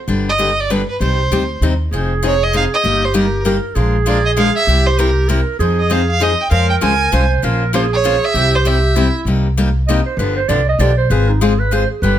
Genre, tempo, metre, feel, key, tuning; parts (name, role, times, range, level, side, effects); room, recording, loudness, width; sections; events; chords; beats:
acoustic string swing (jazz manouche); 196 BPM; 3/4; swing 59% on 8ths; F minor; A4 = 440 Hz
picked steel-string acoustic guitar; accompaniment; 0.1-12.2 s; C3 to C5; -19 LUFS; left 4 dB
upright bass; bass; 0.1-12.2 s; F1 to F2; -17 LUFS; equal
warm violin; melody; 0.3-9.1 s; Bb4 to Ab5; -18 LUFS; right 3 dB
warm clarinet; second line; 1.9-12.2 s; Eb4 to Eb5; -20 LUFS; right 4 dB
light reverb; -13 LUFS; side -11 dB against mid
0.0-1.9 A section; 1.9-9.3 B section; 9.3-12.2 C section
clarinet solo 9.3-12.2
0.1 G; 1.0 Cm; 1.9 Fm7; 2.8 Eb/G; 3.8 Bb7; 4.7 C; 5.6 Fm7; 6.5 Dbmaj7; 7.4 Bbmadd9; 8.3 C; 9.3 Cm7; 10.2 G7; 11.1 Ab6
| 0.08 0.39 0.69 | 1.00 1.31 1.61 | 1.92 2.23 2.53 | 2.84 3.15 3.45 | 3.76 4.06 4.37 | 4.68 4.98 5.29 | 5.59 5.90 6.21 | 6.51 6.82 7.12 | 7.43 7.74 8.04 | 8.35 8.65 8.96 | 9.27 9.57 9.88 | 10.19 10.49 10.80 | 11.10 11.41 11.72 | 12.02